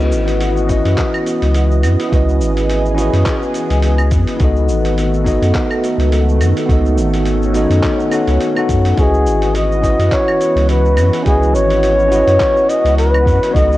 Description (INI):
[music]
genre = sunset chillout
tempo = 105 BPM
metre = 4/4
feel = swing 56% on 16ths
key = C# minor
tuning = A4 = 439 Hz
[part]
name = bell-like tine electric piano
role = accompaniment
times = 0.0-13.8 s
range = B3 to F#5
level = -18 LUFS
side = moving between left 4 dB and right 4 dB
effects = auto-pan, vintage 12-bit sampler grit, cassette tape, analog delay
[part]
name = lush unison pad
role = sustained chords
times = 0.0-13.8 s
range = D#3 to D#5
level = -21 LUFS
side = equal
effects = chorus, phaser, cassette tape
[part]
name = warm sub bass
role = bass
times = 0.0-13.8 s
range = G#1 to F#2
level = -15 LUFS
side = equal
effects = none
[part]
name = dusty soul sampler-style drum kit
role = drums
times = 0.0-13.8 s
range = claves, handclaps, hi-hat, shaker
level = -26 LUFS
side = right 1 dB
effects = cassette tape
[part]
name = electronic kick drum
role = drums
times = 0.7-13.7 s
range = none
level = -18 LUFS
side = equal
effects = overdrive, cassette tape
[part]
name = breathy flugelhorn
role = melody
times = 9.0-13.8 s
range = G#4 to D#5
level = -14 LUFS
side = equal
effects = cassette tape, analog delay
[sound]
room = light reverb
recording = home recording on cassette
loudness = -12 LUFS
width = side -16 dB against mid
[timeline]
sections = 0.0-13.8 A section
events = none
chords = 0.0 C#m11; 4.4 B7; 9.0 C#m11